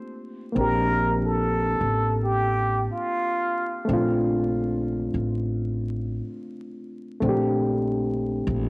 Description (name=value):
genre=hip hop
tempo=72 BPM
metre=4/4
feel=swing 62% on 16ths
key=Bb major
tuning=A4 = 439 Hz
part: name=overdriven reed electric piano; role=accompaniment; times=0.0-8.7 s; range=A3 to G4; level=-26 LUFS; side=equal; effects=cassette tape, low-pass filter
part: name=trumpet with plunger mute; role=melody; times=0.6-3.9 s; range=F4 to Bb4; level=-25 LUFS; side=equal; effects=low-pass filter, cassette tape
part: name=upright bass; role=bass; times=0.6-8.7 s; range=A1 to Bb1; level=-26 LUFS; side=equal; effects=transformer saturation
room=moderate spring reverb, RT60 2.2 s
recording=home recording on cassette, vinyl crackle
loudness=-22 LUFS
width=side -26 dB against mid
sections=0.0-8.7 A section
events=none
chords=0.0 Bbmaj9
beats=| 0.55 1.38 2.22 3.05 | 3.88 4.72 5.55 6.38 | 7.22 8.05